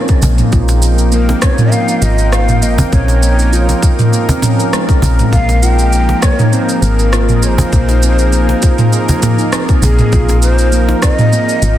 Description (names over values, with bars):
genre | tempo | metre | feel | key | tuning
organic downtempo | 100 BPM | 4/4 | swing 54% on 16ths | Bb dorian | A4 = 440 Hz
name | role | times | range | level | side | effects
warm analog pad | sustained chords | 0.0-11.8 s | F3 to G5 | -20 LUFS | equal | chorus, tremolo, sidechain pumping
handpan | arpeggios | 0.0-11.7 s | Ab3 to Bb4 | -18 LUFS | right 1 dB | digital delay
bronze singing bowl | texture | 0.0-11.8 s | none | barely audible | none | none
electronic kick drum | drums | 0.1-11.2 s | none | -12 LUFS | equal | none
organic electronic drum kit | drums | 0.1-11.8 s | cabasa, rim click, toms | -16 LUFS | right 1 dB | soft clipping on snare
woody FM bass | bass | 0.2-11.8 s | Ab1 to Bb1 | -12 LUFS | equal | sidechain pumping
cajon | percussion | 0.2-11.0 s | none | -17 LUFS | equal | none
breathy mellow ney | melody | 1.1-11.8 s | Ab4 to G5 | -19 LUFS | left 1 dB | vintage 12-bit sampler grit, digital delay
room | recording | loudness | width
light reverb, small room ambience | dense, heavily limited modern master | -9 LUFS | side -12 dB against mid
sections
0.0-11.8 A section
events
none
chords
0.0 Bbm7; 5.3 Fm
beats
| 0.52 1.12 1.72 2.32 | 2.92 3.52 4.12 4.72 | 5.32 5.92 6.52 7.12 | 7.72 8.32 8.92 9.52 | 10.12 10.72 11.32